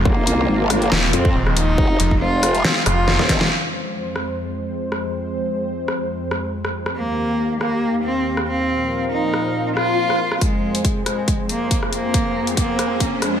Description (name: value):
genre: heavy wobble dubstep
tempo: 139 BPM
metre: 4/4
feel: swing 54% on 16ths, half-time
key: F minor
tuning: A4 = 441 Hz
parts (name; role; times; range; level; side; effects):
- lush unison pad; sustained chords; 0.0-13.4 s; Eb2 to F5; -25 LUFS; left 1 dB; chorus, vintage 12-bit sampler grit, sidechain pumping
- snarling distorted saw bass; bass; 0.0-3.2 s; Eb1 to F1; -20 LUFS; equal; distortion, overdrive
- rich cello; melody; 0.1-3.4, 7.0-13.4 s; Ab3 to F4; -22 LUFS; equal; tape echo
- growl bass; bass; 0.1-3.5 s; Eb1 to F2; -19 LUFS; equal; chorus, overdrive
- electronic kick drum; drums; 0.1-3.4, 10.4-13.1 s; none; -20 LUFS; equal; overdrive
- dubstep drum kit; drums; 0.3-13.3 s; hi-hat, rim click, snare drum; -22 LUFS; left 1 dB; none
- swell and riser; sound effects; 9.7-13.4 s; none; -26 LUFS; left 2 dB; none
room: light reverb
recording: high-pass filter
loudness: -17 LUFS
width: side -9 dB against mid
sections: 0.0-3.5 A section; 3.5-10.4 B section; 10.4-13.4 C section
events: drop 0.0-3.5; drum fill 3.1-3.5; band accent 3.4; filter sweep on analog synth pad 3.5-10.4; swell 9.7-10.4; build-up 10.4-13.4; riser 10.4-13.4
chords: 0.0 Fm; 7.0 Ebadd9; 8.7 Bbsus2; 10.4 Fm